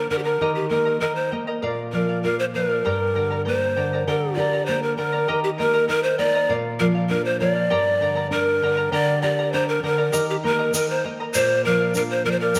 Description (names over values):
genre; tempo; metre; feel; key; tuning
andean folk, Andean ensemble; 99 BPM; 2/4; straight; G minor; A4 = 440 Hz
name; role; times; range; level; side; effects
breathy hollow large pan pipes; melody; 0.0-12.6 s; G4 to D5; -24 LUFS; equal; none
charango; accompaniment; 0.0-12.6 s; G4 to Bb5; -30 LUFS; equal; none
nylon-string guitar; accompaniment; 0.0-12.6 s; G2 to G4; -29 LUFS; equal; none
egg shaker; percussion; 10.1-12.6 s; none; -32 LUFS; equal; none
room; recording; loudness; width
moderate concert hall reverb, RT60 1.9 s; none; -22 LUFS; mono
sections
0.0-5.3 A section; 5.3-12.6 A section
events
none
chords
0.4 Eb; 1.6 Bb; 2.8 Gm; 5.3 Eb; 6.5 Bb; 7.7 Gm; 10.1 Eb; 11.3 Bb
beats
| 0.41 1.01 | 1.62 2.23 | 2.84 3.45 | 4.06 4.67 | 5.28 5.89 | 6.50 7.11 | 7.71 8.32 | 8.93 9.53 | 10.14 10.74 | 11.35 11.95 | 12.55